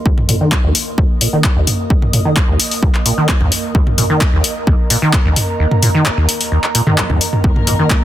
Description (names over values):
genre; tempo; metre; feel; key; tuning
acid house; 130 BPM; 4/4; straight; unclear; A4 = 440 Hz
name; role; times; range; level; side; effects
warbly tape-like pad; texture; 0.0-8.0 s; Bb3 to Eb6; -24 LUFS; right 2 dB; chorus, built-in reverb, sidechain pumping
acid bass, saw; riff; 0.1-7.9 s; Eb2 to Eb3; -16 LUFS; equal; overdrive, lush chorus
electronic kick drum; drums; 0.1-8.0 s; none; -14 LUFS; equal; overdrive
punchy analog drum machine; drums; 0.2-8.0 s; handclaps, hi-hat, toms; -16 LUFS; equal; overdrive
dark studio string section; sustained chords; 7.4-8.0 s; Eb2 to Bb4; -22 LUFS; left 1 dB; sidechain pumping
room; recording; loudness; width
digital ambience; dense, heavily limited modern master; -12 LUFS; side -12 dB against mid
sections
0.0-8.0 A section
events
filter sweep on acid bass 0.0-8.0; kick drops out 5.6-7.4; drum fill 7.0-7.4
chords
0.0 Eb5